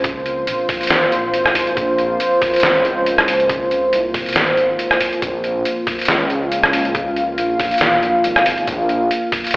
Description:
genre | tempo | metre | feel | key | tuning
deep dubstep | 139 BPM | 4/4 | swing 55% on 16ths, half-time | Bb minor | A4 = 439 Hz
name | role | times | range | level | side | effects
deep dark ambient pad | sustained chords | 0.0-9.6 s | Bb3 to F5 | -17 LUFS | equal | chorus, built-in reverb
dark detuned saw bass | bass | 0.0-9.6 s | Ab1 to Db2 | -25 LUFS | equal | none
electronic kick drum | drums | 0.0-9.4 s | none | -26 LUFS | equal | none
trip hop sampler-style drum kit | drums | 0.0-9.6 s | hi-hat, rim click, snare drum | -18 LUFS | equal | none
room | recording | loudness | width
wet echo chamber reverb, RT60 1.7 s | played on a big sound system in a bare room, stone room reverb, telephone sound | -14 LUFS | side -24 dB against mid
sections
0.0-9.6 A section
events
none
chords
0.0 Bb5

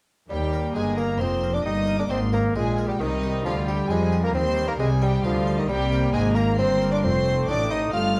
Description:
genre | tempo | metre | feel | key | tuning
classical, baroque-style concerto movement with solo episodes | 134 BPM | 3/4 | straight | Eb major | A4 = 440 Hz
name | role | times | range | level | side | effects
rich chamber violin section | melody | 0.3-8.2 s | Eb5 to F6 | -37 LUFS | equal | none
warm bassoon | melody | 0.3-8.2 s | Eb3 to F4 | -29 LUFS | equal | none
rich chamber violin section | second line | 0.3-8.2 s | Eb4 to F5 | -34 LUFS | equal | none
harpsichord | accompaniment | 0.3-8.2 s | Eb2 to C5 | -38 LUFS | equal | none
warm chamber viola section | accompaniment | 0.3-8.2 s | G3 to Bb3 | -32 LUFS | equal | none
rich chamber cello section | bass | 0.3-8.2 s | Eb2 to F3 | -31 LUFS | equal | none
rich chamber double bass section | bass | 0.3-8.2 s | F1 to F2 | -29 LUFS | equal | none
room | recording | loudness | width
moderate recital hall reverb, RT60 1.5 s | dark, warm production | -23 LUFS | mono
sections
0.3-8.2 A section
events
none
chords
0.3 Eb; 1.7 Eb/G; 3.0 Cm; 5.7 C5; 7.0 F7

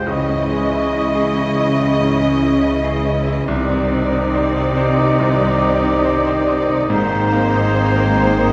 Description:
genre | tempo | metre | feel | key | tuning
cinematic | 70 BPM | 4/4 | rubato | unclear | A4 = 440 Hz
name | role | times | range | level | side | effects
muted symphonic violin section | melody | 0.0-8.5 s | C5 to Eb5 | -26 LUFS | equal | none
dark clarinet | second line | 0.0-8.5 s | G4 to Ab4 | -30 LUFS | equal | none
mellow hollow silver concert flute | second line | 0.0-8.5 s | Bb5 to D6 | -30 LUFS | equal | none
muted symphonic violin section | second line | 0.0-8.5 s | Eb4 to Fb4 | -29 LUFS | equal | none
warm oboe | second line | 0.0-8.5 s | C5 to Eb5 | -30 LUFS | equal | none
bright grand piano | accompaniment | 0.0-8.5 s | C2 to Eb5 | -26 LUFS | equal | none
muted symphonic viola section | accompaniment | 0.0-8.5 s | Ab3 to C4 | -28 LUFS | equal | none
mellow French horn section | sustained chords | 0.0-8.5 s | Eb3 to Eb5 | -27 LUFS | equal | none
concert harp | arpeggios | 0.0-8.5 s | Ab2 to F5 | -29 LUFS | equal | none
muted studio cello section | bass | 0.0-8.5 s | Ab2 to Db3 | -23 LUFS | equal | none
muted studio double bass section | bass | 0.0-8.5 s | Ab1 to Db2 | -26 LUFS | equal | none
room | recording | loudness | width
wet recital hall reverb, RT60 1.6 s | recorded in a church or concert hall | -17 LUFS | mono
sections
0.0-8.5 A section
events
none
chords
0.1 Dbmadd9; 3.5 Cmadd9; 6.9 Abadd9

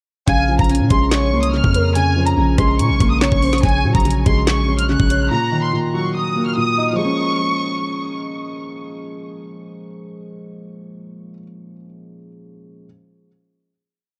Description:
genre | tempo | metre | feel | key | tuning
hip hop, drill | 143 BPM | 4/4 | half-time | Bb minor | A4 = 440 Hz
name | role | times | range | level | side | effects
warm studio violin section | melody | 0.3-8.2 s | Ab5 to Gb6 | -24 LUFS | equal | low-pass filter, tape echo
gliding portamento lead | second line | 0.3-3.6 s | Bb4 to F5 | -29 LUFS | equal | chorus, tape echo
dark baby grand piano | accompaniment | 0.3-12.9 s | Bb2 to Db5 | -24 LUFS | equal | low-pass filter, tape echo
long sustained 808-style bass | bass | 0.3-5.3 s | Bb1 to Bb2 | -21 LUFS | equal | none
drill drum kit | drums | 0.3-5.2 s | handclaps, hi-hat, kick drum, rim click, snare drum | -21 LUFS | equal | overdrive, vintage 12-bit sampler grit
room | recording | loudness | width
light reverb, digital ambience | echo-heavy mix | -17 LUFS | mono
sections
0.3-7.0 hook; 7.0-10.3 final chord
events
none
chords
0.3 Bbm7; 3.6 Gbsus2/Bb; 5.3 Ebm/Bb; 7.0 Bbm7

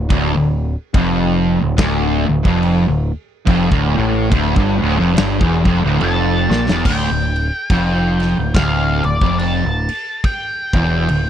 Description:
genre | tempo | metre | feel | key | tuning
stoner and doom metal | 71 BPM | 4/4 | swing 58% on 8ths | D minor | A4 = 440 Hz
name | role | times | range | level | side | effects
distorted electric guitar | riff | 0.0-6.8 s | D2 to Bb2 | -21 LUFS | equal | distortion
fuzz guitar | riff | 0.0-11.3 s | D2 to Bb2 | -17 LUFS | equal | distortion
growling picked electric bass | bass | 0.0-11.3 s | D1 to Bb1 | -20 LUFS | equal | overdrive
big rock drum kit | drums | 0.1-11.3 s | crash cymbal, kick drum, snare drum | -19 LUFS | equal | none
octave-fuzz lead guitar | melody | 6.0-11.3 s | D5 to A5 | -22 LUFS | left 1 dB | distortion
room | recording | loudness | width
little or no reverb | dry, close 1970s-style studio recording | -14 LUFS | side -10 dB against mid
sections
0.0-6.8 A section; 6.8-11.3 B section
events
drum fill 6.4-6.8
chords
0.0 Dm

